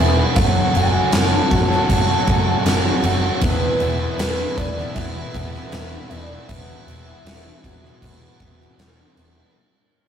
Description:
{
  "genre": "rock, shoegaze and dream pop",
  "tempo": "78 BPM",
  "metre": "4/4",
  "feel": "straight",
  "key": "E major",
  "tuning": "A4 = 440 Hz",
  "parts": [
    { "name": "hollow clarinet-like synth lead", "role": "melody", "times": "0.0-8.7 s", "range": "B4 to A5", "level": "-26 LUFS", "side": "equal", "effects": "chorus" },
    { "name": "brassy analog pad", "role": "sustained chords", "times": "0.0-9.5 s", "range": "G#4 to E6", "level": "-32 LUFS", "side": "left 1 dB", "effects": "chorus" },
    { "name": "picked twelve-string acoustic guitar", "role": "arpeggios", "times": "0.0-9.5 s", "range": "E3 to E4", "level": "-31 LUFS", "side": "left 5 dB", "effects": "none" },
    { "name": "raw garage guitar", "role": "riff", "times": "0.0-9.5 s", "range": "E2 to G#4", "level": "-26 LUFS", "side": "right 7 dB", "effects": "overdrive" },
    { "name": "thick fuzz guitar", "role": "riff", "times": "0.0-9.5 s", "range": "E2 to F#3", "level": "-28 LUFS", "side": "left 4 dB", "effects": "distortion" },
    { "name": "vintage muted picked electric bass", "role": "bass", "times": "0.0-9.4 s", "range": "E1 to F#1", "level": "-23 LUFS", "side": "equal", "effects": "none" },
    { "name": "huge arena drum kit", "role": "drums", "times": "0.4-9.3 s", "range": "crash cymbal, kick drum, snare drum", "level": "-21 LUFS", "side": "equal", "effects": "none" }
  ],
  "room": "moderate stone room reverb, RT60 1.1 s",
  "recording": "rough rehearsal-room recording, tube saturation",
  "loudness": "-16 LUFS",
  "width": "side -8 dB against mid",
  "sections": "0.0-9.5 A section",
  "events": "fade-out 0.0-9.5",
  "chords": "0.4 F#m; 3.4 E; 6.5 Eadd9"
}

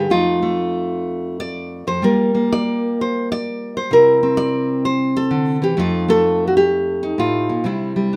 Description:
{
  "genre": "solo jazz",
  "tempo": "127 BPM",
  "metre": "4/4",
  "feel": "swing 67% on 8ths, rubato",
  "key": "F mixolydian",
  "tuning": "A4 = 445 Hz",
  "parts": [
    { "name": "nylon-string guitar", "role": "solo", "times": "0.0-8.2 s", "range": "F2 to D5", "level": "-18 LUFS", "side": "equal", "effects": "none" }
  ],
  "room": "moderate club reverb, RT60 0.6 s",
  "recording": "none",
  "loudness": "-18 LUFS",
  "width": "mono",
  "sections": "0.0-8.2 A section",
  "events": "none",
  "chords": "0.1 F7; 2.0 Gm7; 3.9 C9; 5.8 F9; 7.6 Cadd9"
}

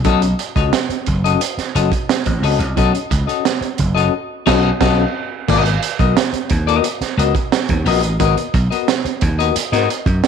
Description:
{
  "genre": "funk",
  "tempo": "88 BPM",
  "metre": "4/4",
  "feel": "straight",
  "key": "unclear",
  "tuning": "A4 = 440 Hz",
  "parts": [
    { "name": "clean electric guitar", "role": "accompaniment", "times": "0.0-10.3 s", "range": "B3 to D#5", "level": "-19 LUFS", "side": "left 12 dB", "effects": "tube saturation, harmonic tremolo" },
    { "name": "vintage slap bass", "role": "bass", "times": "0.0-10.2 s", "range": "F#1 to G#2", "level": "-17 LUFS", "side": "equal", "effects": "none" },
    { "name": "crunchy breakbeat drum kit", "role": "drums", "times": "0.0-10.3 s", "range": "crash cymbal, hi-hat, kick drum, snare drum", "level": "-19 LUFS", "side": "right 5 dB", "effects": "none" }
  ],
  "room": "light reverb",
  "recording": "1960s-style stereo",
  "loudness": "-14 LUFS",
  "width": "side -7 dB against mid",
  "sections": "0.0-5.5 A section; 5.5-10.3 B section",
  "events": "band accent 4.1-5.5",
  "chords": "0.0 B9; 5.5 G#m9"
}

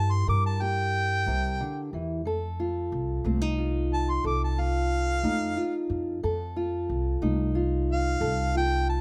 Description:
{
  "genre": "acoustic country blues, solo or duo",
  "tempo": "61 BPM (dotted quarters)",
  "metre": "12/8",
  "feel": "straight",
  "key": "unclear",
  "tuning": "A4 = 439 Hz",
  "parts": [
    { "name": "warm harmonica", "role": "melody", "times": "0.0-9.0 s", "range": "F5 to D6", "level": "-31 LUFS", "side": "equal", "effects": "none" },
    { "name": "fingerpicked steel-string acoustic guitar", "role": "accompaniment", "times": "0.0-9.0 s", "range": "C3 to Bb4", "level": "-32 LUFS", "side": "equal", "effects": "none" },
    { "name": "upright bass", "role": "bass", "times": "0.0-9.0 s", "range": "C2 to G2", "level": "-30 LUFS", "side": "equal", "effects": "none" }
  ],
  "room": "light reverb",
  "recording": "none",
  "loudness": "-27 LUFS",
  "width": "mono",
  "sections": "0.0-9.0 A section",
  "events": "none",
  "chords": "0.0 C7; 2.3 F7"
}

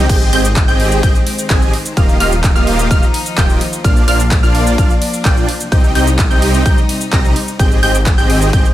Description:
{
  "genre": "EDM, festival progressive house",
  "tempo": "128 BPM",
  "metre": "4/4",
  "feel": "straight",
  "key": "Eb major",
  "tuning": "A4 = 440 Hz",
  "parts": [
    { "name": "warm symphonic string section", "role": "sustained chords", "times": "0.0-8.7 s", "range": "C3 to Eb4", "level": "-23 LUFS", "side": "left 2 dB", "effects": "sidechain pumping" },
    { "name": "wide unison pluck", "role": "arpeggios", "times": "0.0-8.7 s", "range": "F6 to Bb6", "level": "-22 LUFS", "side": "equal", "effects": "vintage 12-bit sampler grit, sidechain pumping, dub echo" },
    { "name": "supersaw chords", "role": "riff", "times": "0.0-8.7 s", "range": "Bb3 to Bb5", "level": "-18 LUFS", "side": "right 1 dB", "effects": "analog chorus, sidechain pumping, dub echo" },
    { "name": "detuned saw bass", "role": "bass", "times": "0.0-8.6 s", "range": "Eb1 to C2", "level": "-17 LUFS", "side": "equal", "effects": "sidechain pumping" },
    { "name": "big-room dance drum kit", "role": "drums", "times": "0.1-8.7 s", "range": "cabasa, crash cymbal, handclaps, hi-hat, ride cymbal", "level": "-21 LUFS", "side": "equal", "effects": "overdrive" },
    { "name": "electronic kick drum", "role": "drums", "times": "0.1-8.6 s", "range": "none", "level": "-12 LUFS", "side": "equal", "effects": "none" }
  ],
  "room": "little or no reverb",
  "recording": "none",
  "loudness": "-10 LUFS",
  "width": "side -14 dB against mid",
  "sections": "0.0-8.7 A section",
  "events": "none",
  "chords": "0.1 Abmaj7; 2.0 Ebadd9; 3.8 Bb; 5.7 Cm; 7.6 Abmaj7"
}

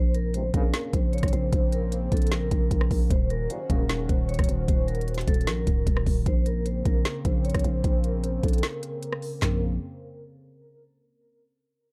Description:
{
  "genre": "hip hop, trap",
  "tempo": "152 BPM",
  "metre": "4/4",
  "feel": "half-time",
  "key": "Bb minor",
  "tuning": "A4 = 441 Hz",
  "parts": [
    { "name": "vibraphone with medium mallets", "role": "melody", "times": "0.0-9.6 s", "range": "A4 to Db5", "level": "-36 LUFS", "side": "equal", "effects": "low-pass filter, delay" },
    { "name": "warm analog pad", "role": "sustained chords", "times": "0.5-9.6 s", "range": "Db3 to Gb4", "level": "-39 LUFS", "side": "equal", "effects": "chorus, low-pass filter" },
    { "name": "growling 808-style bass", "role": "bass", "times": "0.0-9.8 s", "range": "Db1 to Bb1", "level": "-29 LUFS", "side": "equal", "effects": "none" },
    { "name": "trap drum kit", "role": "drums", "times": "0.1-9.5 s", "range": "handclaps, hi-hat, kick drum, rim click, snare drum, toms", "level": "-27 LUFS", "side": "equal", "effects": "none" },
    { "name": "dark brass ensemble", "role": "stabs", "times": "0.3-0.9, 3.5-4.1 s", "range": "F1 to Db3", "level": "-38 LUFS", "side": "equal", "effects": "delay" }
  ],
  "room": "little or no reverb",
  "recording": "dark, warm production",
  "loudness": "-25 LUFS",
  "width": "mono",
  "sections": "0.0-6.3 A section; 6.3-9.4 B section; 9.4-11.0 C section",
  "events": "filter sweep 6.3-9.4; break 8.6-9.4",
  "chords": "0.0 Bbmadd9; 3.1 Ebm7; 6.3 Bbmadd9"
}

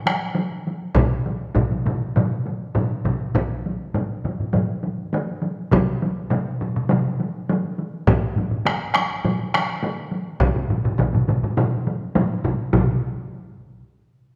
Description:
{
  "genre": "japanese traditional, taiko drum ensemble",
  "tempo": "102 BPM",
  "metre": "4/4",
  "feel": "straight",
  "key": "none",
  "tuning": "none",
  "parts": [
    { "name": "taiko ensemble", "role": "percussion", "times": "0.1-13.0 s", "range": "none", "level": "-27 LUFS", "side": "equal", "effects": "none" },
    { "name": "taiko ensemble", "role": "percussion", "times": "0.1-13.3 s", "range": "none", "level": "-26 LUFS", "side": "equal", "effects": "none" },
    { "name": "taiko ensemble", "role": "percussion", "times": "0.9-13.0 s", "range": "none", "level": "-27 LUFS", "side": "equal", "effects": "none" },
    { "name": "taiko ensemble", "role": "percussion", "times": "1.0-13.3 s", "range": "none", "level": "-27 LUFS", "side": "equal", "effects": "none" }
  ],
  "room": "wet recital hall reverb, RT60 1.7 s",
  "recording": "none",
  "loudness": "-23 LUFS",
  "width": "mono",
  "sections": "0.0-12.7 A section; 12.7-14.4 B section",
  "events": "speeding up 0.0-14.4",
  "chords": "none"
}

